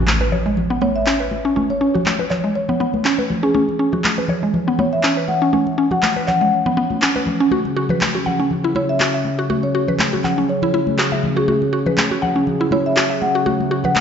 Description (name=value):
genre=afro house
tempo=121 BPM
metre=4/4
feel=swing 55% on 16ths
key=C# minor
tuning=A4 = 441 Hz
part: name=warm analog pad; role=sustained chords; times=0.0-14.0 s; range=C#3 to C#5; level=-24 LUFS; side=right 1 dB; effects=chorus
part: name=mallet-like synth pluck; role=arpeggios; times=0.0-14.0 s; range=G#3 to F#5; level=-20 LUFS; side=right 1 dB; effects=chorus, vintage 12-bit sampler grit, ping-pong delay
part: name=impact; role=sound effects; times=0.0-1.6 s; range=none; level=-24 LUFS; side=equal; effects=none
part: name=electronic handclaps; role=drums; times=0.1-14.0 s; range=none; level=-21 LUFS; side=equal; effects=none
part: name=congas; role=percussion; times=0.1-14.0 s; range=none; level=-23 LUFS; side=left 2 dB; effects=none
part: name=marimba with medium mallets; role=melody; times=0.8-14.0 s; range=G#4 to F#5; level=-22 LUFS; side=left 2 dB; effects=ping-pong delay
room=moderate plate reverb, RT60 1.7 s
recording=played on a big sound system in a bare room, large studio reverb, nothing above 7.7 kHz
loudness=-16 LUFS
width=side -7 dB against mid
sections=0.0-14.0 A section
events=impact 0.0-1.6; filter sweep on synth pluck 0.0-14.0; filter sweep on analog synth pad 0.0-14.0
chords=0.0 C#m7; 7.5 F#sus2/C#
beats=0.08 0.57 1.07 | 1.56 2.06 2.56 3.05 | 3.55 4.04 4.54 5.04 | 5.53 6.03 6.52 7.02 | 7.51 8.01 8.51 9.00 | 9.50 9.99 10.49 10.99 | 11.48 11.98 12.47 12.97 | 13.47 13.96